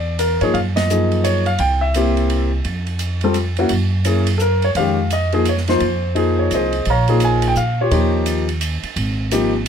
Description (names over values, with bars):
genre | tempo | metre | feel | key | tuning
jazz piano trio | 171 BPM | 3/4 | swing 63% on 8ths | F minor | A4 = 445 Hz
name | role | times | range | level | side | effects
warm baby grand piano | melody | 0.0-9.5 s | Eb3 to Bb5 | -18 LUFS | left 1 dB | none
upright bass | bass | 0.0-9.7 s | Ab1 to Bb2 | -19 LUFS | right 1 dB | none
open jazz drum kit | drums | 0.2-9.7 s | hi-hat, ride cymbal, snare drum | -27 LUFS | right 5 dB | none
room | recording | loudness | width
little or no reverb | close, detailed microphones | -15 LUFS | side -7 dB against mid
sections
0.0-6.9 A section; 6.9-9.7 B section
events
band accent 0.7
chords
0.0 E7(no3); 0.5 Gbmaj9; 1.6 C7; 2.7 N.C.; 3.7 Gb; 4.8 Fm7; 6.9 Bbm7; 7.9 Eb9; 9.0 Absus2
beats
0.20 | 0.55 0.90 1.25 | 1.60 1.95 2.30 | 2.65 3.00 3.35 | 3.71 4.06 4.41 | 4.76 5.11 5.46 | 5.81 6.16 6.51 | 6.86 7.21 7.57 | 7.92 8.27 8.62 | 8.97 9.32 9.67